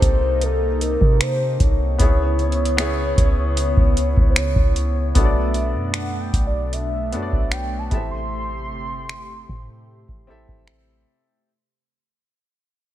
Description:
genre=contemporary R&B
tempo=76 BPM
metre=4/4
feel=straight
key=unclear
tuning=A4 = 440 Hz
part: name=warm velvety synth lead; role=melody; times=0.0-10.6 s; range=A4 to C6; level=-26 LUFS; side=equal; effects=chorus, tape echo
part: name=warm baby grand piano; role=accompaniment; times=0.0-11.5 s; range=Bb3 to E5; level=-28 LUFS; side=left 2 dB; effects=none
part: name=warm analog pad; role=sustained chords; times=0.0-11.4 s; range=B2 to G4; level=-30 LUFS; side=left 1 dB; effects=chorus
part: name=soft 808-style bass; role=bass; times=0.0-11.1 s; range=G1 to C3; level=-22 LUFS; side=equal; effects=none
part: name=booming analog drum machine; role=drums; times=0.0-10.9 s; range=finger snaps, hi-hat, kick drum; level=-19 LUFS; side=equal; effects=vintage 12-bit sampler grit
room=digital ambience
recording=none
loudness=-17 LUFS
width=side -13 dB against mid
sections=0.0-5.2 A section; 5.2-11.5 B section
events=fade-out 5.2-11.5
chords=0.0 Cm7; 2.0 C#m7; 5.2 Bm7; 7.9 Am7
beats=0.41 1.20 | 1.99 2.78 3.57 4.36 | 5.15 5.94 6.73 7.52 | 8.31 9.10 9.89 10.68

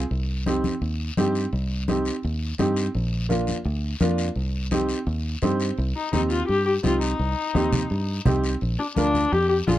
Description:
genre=latin, cumbia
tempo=169 BPM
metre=4/4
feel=straight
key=C minor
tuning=A4 = 439 Hz
part: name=fingered electric bass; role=bass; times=0.0-9.8 s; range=Bb1 to G2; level=-25 LUFS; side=equal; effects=none
part: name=guiro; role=percussion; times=0.1-9.8 s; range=none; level=-37 LUFS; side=left 5 dB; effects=none
part: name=warm upright piano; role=accompaniment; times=0.5-9.8 s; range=Bb3 to C5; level=-26 LUFS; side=right 2 dB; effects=none
part: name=congas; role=percussion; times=0.5-9.8 s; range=none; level=-26 LUFS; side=left 2 dB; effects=none
part: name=warm viola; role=melody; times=6.0-9.8 s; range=D4 to G4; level=-24 LUFS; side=left 3 dB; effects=none
room=little or no reverb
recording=dark, warm production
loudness=-22 LUFS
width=side -14 dB against mid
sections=0.0-5.8 A section; 5.8-9.8 B section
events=upright piano fill 5.2-5.8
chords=0.1 Cm; 2.9 Bb; 4.4 Cm; 8.6 Bb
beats=| 0.11 0.46 0.82 1.17 | 1.53 1.88 2.23 2.59 | 2.94 3.30 3.65 4.01 | 4.36 4.72 5.07 5.42 | 5.78 6.13 6.49 6.84 | 7.20 7.55 7.91 8.26 | 8.61 8.97 9.32 9.68

